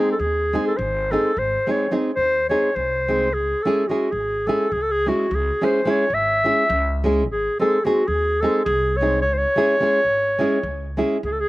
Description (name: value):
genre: balkan folk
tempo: 213 BPM (eighths)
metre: 7/8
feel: straight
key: C# harmonic minor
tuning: A4 = 440 Hz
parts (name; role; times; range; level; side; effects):
- mellow clarinet; melody; 0.0-11.5 s; F#4 to E5; -20 LUFS; equal; none
- nylon-string guitar; accompaniment; 0.0-11.2 s; G#3 to G#4; -22 LUFS; equal; none
- upright bass; bass; 0.2-11.4 s; G#1 to D#2; -27 LUFS; equal; none
room: little or no reverb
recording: recorded outdoors, with no room sound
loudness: -18 LUFS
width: side -18 dB against mid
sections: 0.0-11.2 A section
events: none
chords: 0.0 G#; 3.4 C#m; 7.3 G#; 9.3 C#m